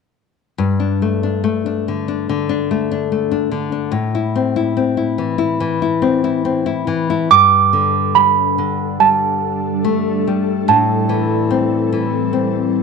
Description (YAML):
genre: children's music, lullaby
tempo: 72 BPM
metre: 4/4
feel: straight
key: unclear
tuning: A4 = 439 Hz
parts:
  - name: nylon-string guitar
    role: accompaniment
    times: 0.6-12.8 s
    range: G2 to E4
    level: -17 LUFS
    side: left 6 dB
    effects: none
  - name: small celesta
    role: melody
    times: 7.3-11.9 s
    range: A5 to D6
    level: -13 LUFS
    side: right 10 dB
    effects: none
  - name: ethereal airy pad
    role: sustained chords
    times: 8.4-12.8 s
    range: G3 to A4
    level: -22 LUFS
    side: right 1 dB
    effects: ensemble chorus, built-in reverb, phaser
room: moderate echo chamber reverb, RT60 1.8 s, small room ambience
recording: 1960s-style stereo with parts hard left and right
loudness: -14 LUFS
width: side -5 dB against mid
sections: 0.6-7.3 A section; 7.3-12.8 B section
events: none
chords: 0.6 Gsus2; 4.0 Am; 7.3 Gsus2; 10.7 Am7